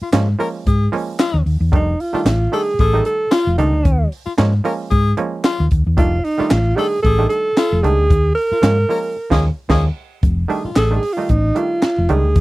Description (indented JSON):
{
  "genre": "funk",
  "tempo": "113 BPM",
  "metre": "4/4",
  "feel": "swing 56% on 16ths",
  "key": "unclear",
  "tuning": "A4 = 435 Hz",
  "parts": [
    { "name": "breathy tenor saxophone", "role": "second line", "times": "0.0-11.0 s", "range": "F4 to Bb4", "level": "-22 LUFS", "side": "left 5 dB", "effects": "none" },
    { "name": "hollow-body short-scale fingered electric bass", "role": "bass", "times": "0.0-12.4 s", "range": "F1 to Ab2", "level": "-16 LUFS", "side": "equal", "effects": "none" },
    { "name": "muted clav", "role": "stabs", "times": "0.1-12.4 s", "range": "Eb3 to Eb4", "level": "-23 LUFS", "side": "right 4 dB", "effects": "none" },
    { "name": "compact cocktail drum kit", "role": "drums", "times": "0.1-12.4 s", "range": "crash cymbal, handclaps, hi-hat, kick drum, snare drum", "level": "-16 LUFS", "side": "equal", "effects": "none" },
    { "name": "breathy alto saxophone", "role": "melody", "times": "1.7-12.4 s", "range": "Eb4 to Bb4", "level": "-18 LUFS", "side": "right 2 dB", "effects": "none" }
  ],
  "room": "little or no reverb",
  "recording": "dry, close 1970s-style studio recording",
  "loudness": "-14 LUFS",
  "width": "side -19 dB against mid",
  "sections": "0.0-10.2 A section; 10.2-12.4 B section",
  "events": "band accent 9.2-10.2; alto saxophone solo 10.2-12.4",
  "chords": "0.0 Eb9sus4; 1.7 F13; 3.9 Eb9sus4; 6.0 F13; 8.1 Eb9sus4; 10.2 F13"
}